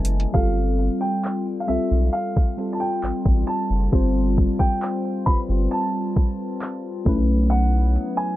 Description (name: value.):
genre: contemporary R&B.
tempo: 67 BPM.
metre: 4/4.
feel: straight.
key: unclear.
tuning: A4 = 440 Hz.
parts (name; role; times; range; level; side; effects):
mellow FM electric piano; accompaniment; 0.0-8.4 s; F#3 to A5; -25 LUFS; left 1 dB; chorus, phaser.
hollow soft pad; sustained chords; 0.0-8.4 s; F#3 to F4; -30 LUFS; left 1 dB; chorus.
round analog bass; bass; 0.0-8.0 s; F#1 to B1; -21 LUFS; equal; none.
smooth R&B drum kit; drums; 0.0-8.2 s; handclaps, hi-hat, kick drum; -20 LUFS; equal; overdrive.
warm baby grand piano; melody; 0.3-8.4 s; E5 to B5; -28 LUFS; right 2 dB; tape echo.
room: little or no reverb.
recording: low-pass filter.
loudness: -19 LUFS.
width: side -15 dB against mid.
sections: 0.3-8.4 A section.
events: FM electric piano fill 0.0-0.3.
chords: 0.3 G9sus4; 7.1 B9sus4.